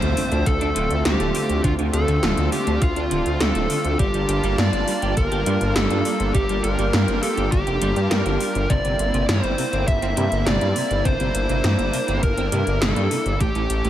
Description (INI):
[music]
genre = synthwave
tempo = 102 BPM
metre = 4/4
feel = straight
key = unclear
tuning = A4 = 437 Hz
[part]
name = dark smooth lead guitar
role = melody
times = 0.0-13.9 s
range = F4 to E5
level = -25 LUFS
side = equal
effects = overdrive, tape echo
[part]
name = soft supersaw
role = sustained chords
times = 0.0-13.9 s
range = D3 to A5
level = -26 LUFS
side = right 1 dB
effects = sidechain pumping
[part]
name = dark detuned saw bass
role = bass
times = 0.0-13.9 s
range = D1 to G2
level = -23 LUFS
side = equal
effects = none
[part]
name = 80s electronic pad drums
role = drums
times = 0.0-13.9 s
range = hi-hat, snare drum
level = -26 LUFS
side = equal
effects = overdrive, gated reverb
[part]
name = impact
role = sound effects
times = 0.0-1.6 s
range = none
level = -36 LUFS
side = equal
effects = none
[part]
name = clean electric guitar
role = riff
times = 0.2-13.9 s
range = A2 to G4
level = -30 LUFS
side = right 1 dB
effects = ensemble chorus, tape echo
[part]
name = electronic kick drum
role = drums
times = 0.5-13.5 s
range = none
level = -22 LUFS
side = equal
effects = none
[sound]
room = light reverb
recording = none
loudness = -18 LUFS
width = side -12 dB against mid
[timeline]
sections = 0.0-13.9 A section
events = impact 0.0-1.6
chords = 0.0 Dm7; 4.0 Gm7; 8.7 C7/G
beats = 0.46 1.05 | 1.64 2.23 2.82 3.41 | 3.99 4.58 5.17 5.76 | 6.35 6.93 7.52 8.11 | 8.70 9.29 9.88 10.46 | 11.05 11.64 12.23 12.82 | 13.41